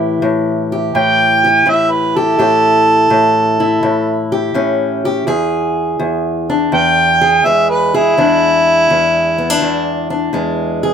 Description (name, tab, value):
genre	acoustic country blues, solo or duo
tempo	83 BPM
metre	4/4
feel	swing 68% on 8ths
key	unclear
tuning	A4 = 440 Hz
part	fingerpicked acoustic archtop guitar	accompaniment	0.0-10.9 s	E2 to G#4	-15 LUFS	left 1 dB	none
part	mellow harmonica	melody	1.0-10.1 s	E4 to G5	-11 LUFS	right 1 dB	none
room	light reverb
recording	close, detailed microphones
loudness	-11 LUFS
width	side -7 dB against mid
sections	0.0-10.9 A section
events	none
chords	0.0 A7; 5.3 E7